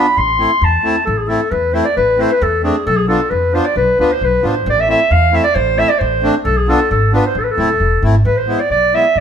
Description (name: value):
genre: klezmer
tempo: 134 BPM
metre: 2/4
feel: straight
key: A harmonic minor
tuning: A4 = 440 Hz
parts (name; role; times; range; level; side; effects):
- warm clarinet; melody; 0.0-9.2 s; G#4 to C6; -14 LUFS; equal; none
- accordion; accompaniment; 0.0-9.1 s; G#3 to F4; -20 LUFS; left 1 dB; none
- upright bass; bass; 0.2-9.2 s; D1 to F2; -18 LUFS; equal; none
room: moderate stone room reverb, RT60 1.0 s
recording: band playing live in one room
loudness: -12 LUFS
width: side -8 dB against mid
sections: 0.0-1.1 A section; 1.1-8.3 B section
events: clarinet solo 0.0-1.1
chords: 0.2 Am; 2.9 Bdim; 4.7 Am; 6.5 Bdim; 7.4 Am; 8.3 E/A